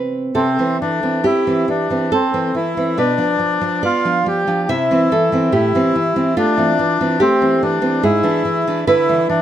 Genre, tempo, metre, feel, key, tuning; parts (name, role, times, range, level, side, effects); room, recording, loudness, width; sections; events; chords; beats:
romantic duo for bandoneon and classical guitar; 71 BPM; 3/4; rubato; C major; A4 = 443 Hz
nylon-string guitar; accompaniment; 0.0-9.4 s; G#2 to E5; -16 LUFS; right 2 dB
bandoneon; melody; 0.4-9.4 s; C4 to G4; -18 LUFS; left 2 dB
light reverb; close, detailed microphones; -14 LUFS; side -10 dB against mid
0.3-9.4 A section
0.3 C; 3.0 Bdim; 4.7 C; 5.5 Am7; 8.0 E7/G#
| 0.35 1.25 2.12 | 2.97 3.83 4.68 | 5.53 6.36 7.20 | 8.03 8.86